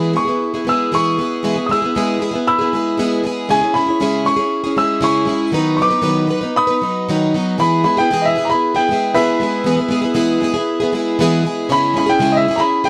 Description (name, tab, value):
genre	rock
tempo	117 BPM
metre	4/4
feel	straight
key	E major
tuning	A4 = 441 Hz
part	clear baby grand piano	melody	0.0-12.9 s	B4 to E6	-20 LUFS	equal	tape echo
part	picked plugged-in twelve-string acoustic guitar	accompaniment	0.0-12.9 s	C#3 to B4	-19 LUFS	equal	none
room	light reverb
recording	dry, close 1970s-style studio recording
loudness	-16 LUFS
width	mono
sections	0.0-12.9 A section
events	grand piano solo 0.0-12.9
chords	0.0 E; 3.5 C#m; 5.5 B/D#; 7.6 E; 11.7 C#m